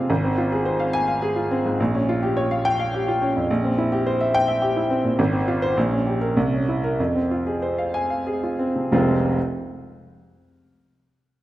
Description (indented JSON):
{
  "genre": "classical, virtuoso piano study",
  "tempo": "90-109 BPM",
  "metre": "3/4",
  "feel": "rubato",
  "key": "F minor",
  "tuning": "A4 = 438 Hz",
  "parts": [
    { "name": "warm grand piano", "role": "solo", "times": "0.0-9.4 s", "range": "F1 to Ab5", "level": "-19 LUFS", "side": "equal", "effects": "none" }
  ],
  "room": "wet recital hall reverb, RT60 1.7 s",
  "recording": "none",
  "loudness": "-19 LUFS",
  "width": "side -14 dB against mid",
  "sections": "0.0-8.9 A section; 8.9-10.8 B section",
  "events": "slowing down 4.3-8.9",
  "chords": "0.1 Fm/Ab; 1.8 Gm7b5/Bb; 3.5 C7/Bb; 5.2 Fm/Ab; 5.8 Gdim/Bb; 6.4 C7b9; 7.0 Fm"
}